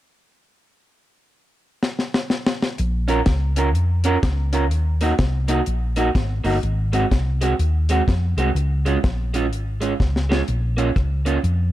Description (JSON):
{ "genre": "ska", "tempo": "125 BPM", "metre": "4/4", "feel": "swing 62% on 8ths", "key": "Bb minor", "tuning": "A4 = 440 Hz", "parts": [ { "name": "deep reggae drum kit", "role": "drums", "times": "1.8-11.6 s", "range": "hi-hat, kick drum, rim click, snare drum", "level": "-22 LUFS", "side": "left 1 dB", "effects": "none" }, { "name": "hollow-body short-scale fingered electric bass", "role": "bass", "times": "2.8-11.7 s", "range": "G1 to F2", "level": "-20 LUFS", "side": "equal", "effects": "none" }, { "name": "electric guitar through a small old amp", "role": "accompaniment", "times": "3.1-11.4 s", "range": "Ab3 to Bb4", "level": "-23 LUFS", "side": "right 3 dB", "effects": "tape echo" } ], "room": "studio reverb", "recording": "dark, warm production", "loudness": "-18 LUFS", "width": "side -14 dB against mid", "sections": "0.9-2.8 A section; 2.8-10.5 B section; 10.5-11.7 C section", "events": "drum fill 1.8-2.8, 10.0-10.5", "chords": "0.9 N.C.; 2.8 Bbm; 4.7 Ebm; 6.6 Ab7; 8.6 Db; 10.5 Bbm" }